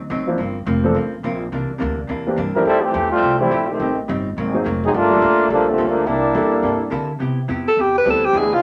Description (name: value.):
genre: jazz.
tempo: 211 BPM.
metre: 4/4.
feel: swing 61% on 8ths.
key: unclear.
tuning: A4 = 439 Hz.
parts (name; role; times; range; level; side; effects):
upright bass; bass; 0.0-8.6 s; F1 to D3; -28 LUFS; equal; none.
hollow-body jazz guitar; accompaniment; 0.1-8.5 s; G2 to A4; -28 LUFS; equal; none.
warm baby grand piano; accompaniment; 0.3-8.3 s; E3 to B4; -24 LUFS; equal; none.
bright trombone section; second line; 2.5-6.9 s; D3 to Bb4; -19 LUFS; equal; none.
warm alto saxophone; melody; 7.7-8.6 s; F4 to B4; -17 LUFS; equal; none.
clear trombone section; sustained chords; 8.3-8.6 s; D3 to E4; -26 LUFS; equal; none.
room: wet club reverb, RT60 0.5 s.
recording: none.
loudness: -19 LUFS.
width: mono.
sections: 0.0-7.2 A section; 7.2-8.6 B section.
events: trombone section solo 0.0-7.2; alto saxophone solo 7.2-8.6.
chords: 0.4 Gm11; 1.5 C9; 2.7 Fmaj9; 3.8 Am7b5; 4.4 Ab9; 4.9 Gm9; 6.1 C13; 7.2 Cmaj7.